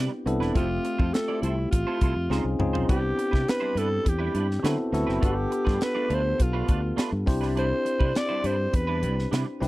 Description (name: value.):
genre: polished 1980s jazz-funk pop.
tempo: 103 BPM.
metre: 4/4.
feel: straight.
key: C major.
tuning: A4 = 441 Hz.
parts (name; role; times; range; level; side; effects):
barky tine electric piano; accompaniment; 0.0-9.7 s; A3 to E5; -29 LUFS; left 1 dB; lush chorus.
semi-hollow electric guitar; riff; 0.0-9.7 s; F#3 to D5; -34 LUFS; right 6 dB; ensemble chorus.
fingered electric bass; bass; 0.0-9.7 s; E1 to D3; -28 LUFS; equal; none.
tight funk drum kit; drums; 0.3-9.7 s; hi-hat, kick drum, snare drum, toms; -26 LUFS; equal; none.
breathy alto saxophone; melody; 0.6-9.3 s; E4 to D5; -29 LUFS; equal; none.
room: little or no reverb.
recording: dry, close 1970s-style studio recording.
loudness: -23 LUFS.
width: side -18 dB against mid.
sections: 0.0-9.7 A section.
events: drum fill 2.3-2.9.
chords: 0.0 Cmaj9; 0.6 Fmaj7; 2.3 Dbmaj9; 2.9 Cmaj9; 4.6 D13; 5.2 G9; 7.3 Cmaj9.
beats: | 0.55 1.14 1.72 2.30 | 2.89 3.47 4.06 4.64 | 5.22 5.81 6.39 6.98 | 7.56 8.15 8.73 9.32.